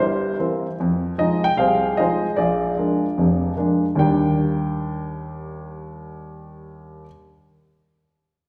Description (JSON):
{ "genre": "solo jazz", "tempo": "150 BPM", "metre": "4/4", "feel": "swing 65% on 8ths", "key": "Eb major", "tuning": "A4 = 440 Hz", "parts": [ { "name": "warm baby grand piano", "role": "solo", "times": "0.0-7.1 s", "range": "F1 to G5", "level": "-22 LUFS", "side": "equal", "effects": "none" } ], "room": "wet recital hall reverb, RT60 1.8 s", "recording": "recorded in a church or concert hall", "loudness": "-21 LUFS", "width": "mono", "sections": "0.0-4.0 A section; 4.0-7.2 B section", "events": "none", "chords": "0.0 C7; 0.8 Fm7; 2.4 Bb7; 4.0 Ebmaj7" }